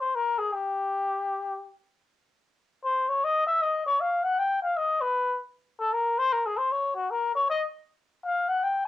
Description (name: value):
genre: jazz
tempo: 156 BPM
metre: 4/4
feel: swing 65% on 8ths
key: unclear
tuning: A4 = 441 Hz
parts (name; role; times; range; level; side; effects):
- trumpet with cup mute; solo; 0.0-8.9 s; Gb4 to G5; -24 LUFS; left 2 dB; cassette tape
room: wet studio reverb, RT60 0.5 s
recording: home recording on cassette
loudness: -25 LUFS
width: side -14 dB against mid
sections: 0.0-3.6 A section; 3.6-8.9 A section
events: muted trumpet solo 0.0-8.9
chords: none